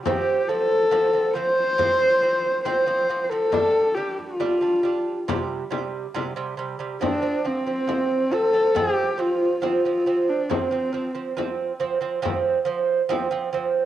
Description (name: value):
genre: mongolian traditional, Mongolian folk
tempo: 69 BPM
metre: 4/4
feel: straight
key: F gong mode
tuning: A4 = 440 Hz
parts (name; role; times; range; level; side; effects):
- dark horsehead fiddle; melody; 0.1-11.4 s; C4 to C5; -21 LUFS; left 2 dB; cassette tape
- lute; arpeggios; 0.1-13.9 s; C3 to D4; -25 LUFS; right 6 dB; cassette tape
- frame drum; percussion; 0.1-13.7 s; none; -30 LUFS; left 7 dB; none
room: moderate spring reverb, RT60 1.6 s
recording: home recording on cassette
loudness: -20 LUFS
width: side -12 dB against mid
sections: 0.0-7.0 A section; 7.0-13.9 B section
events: none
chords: 0.1 F5; 3.5 G5; 5.3 C5; 7.0 F5